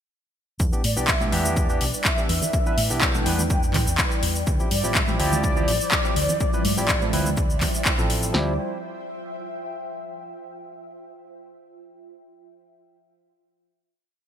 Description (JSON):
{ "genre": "deep house", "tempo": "124 BPM", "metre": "4/4", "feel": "swing 53% on 16ths", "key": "D dorian", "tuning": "A4 = 440 Hz", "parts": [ { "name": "hollow soft pad", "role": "sustained chords", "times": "0.6-8.6 s", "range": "F3 to D5", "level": "-34 LUFS", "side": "left 1 dB", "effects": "ensemble chorus, sidechain pumping" }, { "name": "hollow-body short-scale fingered electric bass", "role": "bass", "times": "0.6-8.6 s", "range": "A1 to A2", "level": "-27 LUFS", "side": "equal", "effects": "sidechain pumping" }, { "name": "house drum kit", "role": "drums", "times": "0.6-8.3 s", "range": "handclaps, hi-hat, shaker", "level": "-24 LUFS", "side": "left 1 dB", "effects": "overdrive" }, { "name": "punchy analog drum machine", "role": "drums", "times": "0.6-8.5 s", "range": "kick drum, snare drum", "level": "-24 LUFS", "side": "equal", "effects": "none" }, { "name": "ethereal airy pad", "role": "texture", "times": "1.9-10.2 s", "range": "F3 to G5", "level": "-35 LUFS", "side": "equal", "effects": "ensemble chorus, built-in reverb, phaser, sidechain pumping" }, { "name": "barky tine electric piano", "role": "stabs", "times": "0.7-8.5 s", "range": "E3 to B4", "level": "-29 LUFS", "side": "equal", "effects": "overdrive, vintage 12-bit sampler grit, sidechain pumping, digital delay" }, { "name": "mellow horn-like synth lead", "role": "melody", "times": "0.8-8.6 s", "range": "D5 to G5", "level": "-29 LUFS", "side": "equal", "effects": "ensemble chorus, ping-pong delay" }, { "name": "congas", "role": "percussion", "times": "1.2-7.7 s", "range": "none", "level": "-31 LUFS", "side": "right 4 dB", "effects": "sidechain pumping on perc" } ], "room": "light reverb", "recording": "bright 1980s-style digital production", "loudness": "-20 LUFS", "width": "side -9 dB against mid", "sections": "0.6-8.3 drop; 8.3-10.3 final chord", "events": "drop 0.6-8.3", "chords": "0.6 Em7; 4.5 Dm11; 8.3 Dm11 (rootless)" }